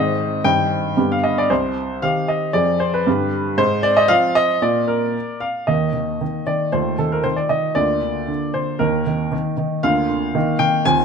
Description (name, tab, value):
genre	classical-period piano sonatina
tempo	115 BPM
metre	2/4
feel	straight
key	C minor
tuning	A4 = 441 Hz
part	warm baby grand piano	solo	0.0-11.0 s	C2 to Ab5	-17 LUFS	equal	none
room	moderate recital hall reverb, RT60 1.7 s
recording	close, detailed microphones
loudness	-17 LUFS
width	side -6 dB against mid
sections	0.0-5.7 A section; 5.7-11.0 B section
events	none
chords	0.4 Cm/G; 1.0 G; 1.5 Cm; 2.5 Fm; 3.1 G; 3.6 Fm/Ab; 4.6 Bb; 5.7 Eb5; 6.7 F7/Eb; 7.8 Bb/D; 8.8 Eb5; 9.8 Bb/D; 10.4 Eb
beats	| 0.44 0.97 | 1.50 2.03 | 2.55 3.07 | 3.58 4.10 | 4.62 5.16 | 5.69 6.21 | 6.73 7.25 | 7.77 8.29 | 8.81 9.33 | 9.84 10.35 | 10.87